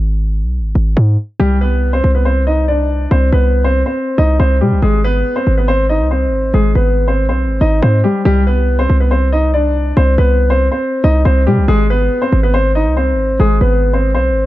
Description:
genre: hip hop, drill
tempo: 140 BPM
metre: 4/4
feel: half-time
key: unclear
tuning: A4 = 443 Hz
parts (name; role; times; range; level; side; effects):
- hard-hitting 808-style bass; bass; 0.0-14.5 s; Ab1 to C3; -13 LUFS; equal; none
- dark concert grand piano; melody; 1.4-14.5 s; G3 to Eb5; -15 LUFS; left 1 dB; none
room: little or no reverb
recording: dark, warm production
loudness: -11 LUFS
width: side -15 dB against mid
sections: 0.0-8.3 A section; 8.3-14.5 B section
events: break 0.0-1.4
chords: 0.0 N.C.; 4.8 Ab; 8.3 N.C.; 11.7 Ab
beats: 0.11 0.54 0.97 | 1.40 1.82 2.25 2.68 | 3.11 3.54 3.97 4.40 | 4.83 5.25 5.68 6.11 | 6.54 6.97 7.40 7.83 | 8.25 8.68 9.11 9.54 | 9.97 10.40 10.82 11.25 | 11.68 12.11 12.54 12.97 | 13.40 13.82 14.25

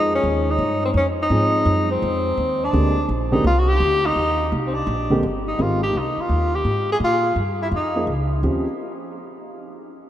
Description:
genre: jazz, small-group swing and bop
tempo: 168 BPM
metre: 4/4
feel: swing 63% on 8ths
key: Eb major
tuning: A4 = 439 Hz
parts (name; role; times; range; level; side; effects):
- mellow tenor saxophone; melody; 0.0-8.1 s; C4 to Ab4; -21 LUFS; left 1 dB; none
- dark upright piano; accompaniment; 0.0-5.8, 8.0-8.6 s; D3 to C5; -25 LUFS; right 1 dB; none
- upright bass; bass; 0.0-8.6 s; G1 to Bb2; -23 LUFS; equal; none
room: wet cathedral reverb, RT60 7.0 s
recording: in a vast, echoing space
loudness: -18 LUFS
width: side -12 dB against mid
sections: 0.0-5.6 A section; 5.6-8.4 B section; 8.4-9.9 C section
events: none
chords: 0.0 Fm7; 2.7 Bb13; 4.2 Cm; 4.9 Bb13; 5.6 Abmaj7; 7.0 Bbsus4; 8.4 Eb13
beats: 0.24 0.60 0.95 | 1.31 1.67 2.02 2.38 | 2.74 3.09 3.45 3.81 | 4.16 4.52 4.87 5.23 | 5.59 5.94 6.30 6.66 | 7.01 7.37 7.73 8.09 | 8.44

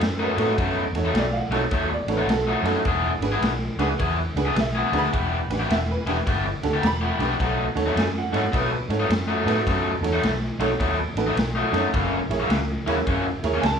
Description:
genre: electric blues shuffle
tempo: 106 BPM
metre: 4/4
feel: swing 64% on 8ths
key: B mixolydian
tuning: A4 = 439 Hz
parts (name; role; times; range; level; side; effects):
- clear upright piano; accompaniment; 0.0-13.8 s; D4 to B5; -27 LUFS; right 4 dB; none
- raw garage guitar; riff; 0.0-13.7 s; F#2 to G#4; -25 LUFS; left 2 dB; overdrive
- vintage muted fingered electric bass; bass; 0.0-13.8 s; E1 to B2; -27 LUFS; equal; none
- raw garage drum kit; drums; 0.0-13.8 s; kick drum, ride cymbal, snare drum; -27 LUFS; equal; none
room: moderate studio reverb, RT60 0.7 s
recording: small room reverb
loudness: -21 LUFS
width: side -7 dB against mid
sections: 0.0-13.8 A section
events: none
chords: 0.0 B7; 2.9 E7; 5.1 Em7; 7.4 B7; 11.9 F#7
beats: 0.01 | 0.58 1.15 1.72 2.29 | 2.86 3.42 3.99 4.56 | 5.13 5.70 6.26 6.83 | 7.40 7.96 8.53 9.10 | 9.66 10.23 10.80 11.36 | 11.93 12.50 13.06 13.63

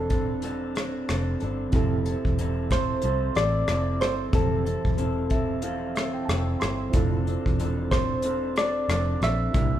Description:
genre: indie pop, bedroom pop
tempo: 92 BPM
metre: 4/4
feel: swing 60% on 16ths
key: unclear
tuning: A4 = 440 Hz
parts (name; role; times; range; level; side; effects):
- soft electric-piano-like synth keys; melody; 0.0-9.8 s; A4 to E5; -28 LUFS; equal; chorus
- electric guitar through a small old amp; accompaniment; 0.0-9.8 s; C3 to A4; -30 LUFS; right 1 dB; vibrato effect
- vintage muted fingered electric bass; bass; 0.0-9.8 s; E1 to C2; -28 LUFS; equal; none
- soft brush drum kit; drums; 0.1-9.7 s; hi-hat, kick drum, rim click; -27 LUFS; equal; none
- reed electric piano; accompaniment; 1.7-9.8 s; E3 to C6; -35 LUFS; right 4 dB; fast tremolo
room: light reverb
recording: band playing live in one room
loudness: -23 LUFS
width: side -11 dB against mid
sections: 0.0-9.8 A section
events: reed electric piano fill 5.0-6.9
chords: 0.0 Dm7; 1.7 Fmaj7; 6.9 Dm7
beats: 0.43 1.08 | 1.73 2.38 3.03 3.68 | 4.33 4.98 5.63 6.28 | 6.93 7.58 8.24 8.89 | 9.54

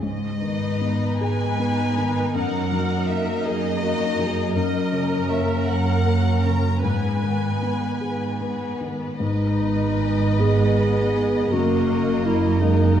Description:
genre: cinematic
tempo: 49-56 BPM (dotted quarters)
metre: 6/8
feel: rubato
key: G# minor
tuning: A4 = 436 Hz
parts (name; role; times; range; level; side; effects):
- warm studio violin section; melody; 0.0-13.0 s; D#5 to A#5; -31 LUFS; left 3 dB; none
- dark grand piano; accompaniment; 0.0-13.0 s; F#2 to A#4; -25 LUFS; left 2 dB; none
- concert harp; arpeggios; 0.0-13.0 s; F#2 to A#5; -30 LUFS; left 6 dB; none
- warm symphonic cello section; bass; 0.0-13.0 s; F#2 to G#2; -26 LUFS; right 4 dB; none
- warm symphonic violin section; second line; 0.4-13.0 s; B3 to D#5; -30 LUFS; left 2 dB; none
- warm symphonic viola section; accompaniment; 1.2-13.0 s; G#3 to B4; -29 LUFS; right 2 dB; none
- mellow clarinet; second line; 9.2-13.0 s; D#4 to G#4; -24 LUFS; equal; none
- dark symphonic double bass section; bass; 9.2-13.0 s; F#1 to G#1; -24 LUFS; right 3 dB; none
room: wet scoring stage reverb, RT60 1.7 s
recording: dark, warm production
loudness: -19 LUFS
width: side -9 dB against mid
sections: 0.0-9.2 A section; 9.2-13.0 A section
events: none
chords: 0.0 G#m; 2.4 D#m/F#; 4.6 F#; 6.8 G#m; 11.5 D#m/F#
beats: | 0.02 1.21 | 2.35 3.46 | 4.56 5.68 | 6.84 8.02 | 9.21 10.41 | 11.53 12.62

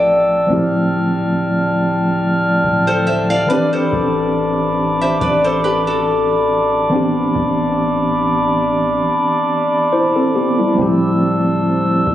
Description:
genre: contemporary R&B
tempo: 70 BPM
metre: 4/4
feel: swing 54% on 16ths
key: D minor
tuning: A4 = 441 Hz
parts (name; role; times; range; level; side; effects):
- mellow tine electric piano; accompaniment; 0.0-12.1 s; E3 to C5; -17 LUFS; equal; overdrive, medium stereo tremolo
- glass harmonica; sustained chords; 0.0-12.1 s; C5 to F6; -18 LUFS; equal; none
- nylon-string guitar; arpeggios; 0.0-7.1 s; F#4 to F5; -18 LUFS; left 1 dB; tape echo
- long sustained 808-style bass; bass; 0.0-12.1 s; D1 to A1; -26 LUFS; equal; none
room: moderate lush hall reverb, RT60 2.5 s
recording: recorded on a phone in the room, club reverb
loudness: -14 LUFS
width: side -12 dB against mid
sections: 0.0-10.8 A section; 10.8-12.1 B section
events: none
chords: 0.0 Dm11; 3.5 Am11; 10.8 Dm11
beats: | 0.50 1.35 2.21 3.07 | 3.93 4.78 5.64 6.50 | 7.35 8.21 9.07 9.93 | 10.78 11.64

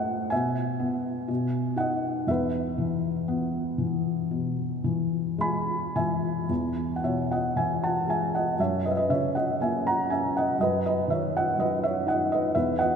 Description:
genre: classical, lyrical solo piano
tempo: 53-62 BPM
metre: 4/4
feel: rubato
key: E major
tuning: A4 = 444 Hz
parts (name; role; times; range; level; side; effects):
- felt-muted upright piano; solo; 0.0-13.0 s; E2 to B5; -24 LUFS; equal; none
room: wet church reverb, RT60 3.4 s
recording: recorded in a church or concert hall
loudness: -24 LUFS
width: side -6 dB against mid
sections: 0.0-6.5 A section; 6.5-13.0 B section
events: none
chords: 0.3 Bsus4; 1.3 B; 2.3 E; 8.6 F#7; 10.6 B/F#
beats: 0.32 1.30 | 2.29 3.29 4.32 5.40 | 6.50 7.56 8.60 9.61 | 10.59 11.58 12.56

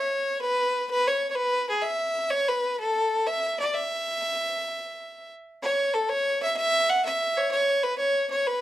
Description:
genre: celtic folk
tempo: 127 BPM (dotted quarters)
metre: 12/8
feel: straight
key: E mixolydian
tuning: A4 = 440 Hz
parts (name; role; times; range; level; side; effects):
- clear fiddle; solo; 0.0-8.6 s; G#4 to F#5; -23 LUFS; equal; none
room: moderate studio reverb, RT60 0.7 s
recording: dark, warm production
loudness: -23 LUFS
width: side -14 dB against mid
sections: 0.0-5.6 A section; 5.6-8.6 B section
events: none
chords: none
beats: 0.41 0.89 1.36 | 1.83 2.31 2.78 3.25 | 3.73 4.20 4.67 5.15 | 5.62 6.09 6.57 7.04 | 7.51 7.99 8.46

